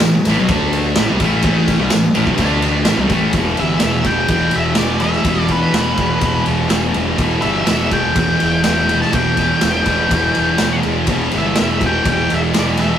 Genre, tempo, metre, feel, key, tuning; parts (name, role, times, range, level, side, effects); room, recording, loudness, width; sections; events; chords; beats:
garage rock duo or trio; 124 BPM; 4/4; straight; E minor; A4 = 439 Hz
thick fuzz guitar; riff; 0.0-13.0 s; E2 to D4; -17 LUFS; equal; distortion
fuzz picked electric bass; bass; 0.0-12.9 s; E1 to D2; -21 LUFS; equal; overdrive
raw garage drum kit; drums; 0.0-12.9 s; kick drum, ride cymbal, snare drum; -19 LUFS; right 1 dB
tambourine; percussion; 0.0-12.7 s; -36 LUFS; right 1 dB
octave-fuzz lead guitar; melody; 3.6-13.0 s; B4 to A5; -20 LUFS; left 1 dB; distortion
moderate small room reverb, RT60 0.5 s; rough rehearsal-room recording, warm saturation; -13 LUFS; side -9 dB against mid
0.0-3.3 A section; 3.3-13.0 B section
0.5 D5; 1.0 A5; 2.4 D5; 2.9 A5; 3.3 Em
0.01 0.49 0.96 | 1.44 1.91 2.39 2.87 | 3.34 3.82 4.30 4.78 | 5.26 5.75 6.23 6.71 | 7.20 7.68 8.17 8.65 | 9.14 9.62 10.11 10.60 | 11.09 11.57 12.06 12.55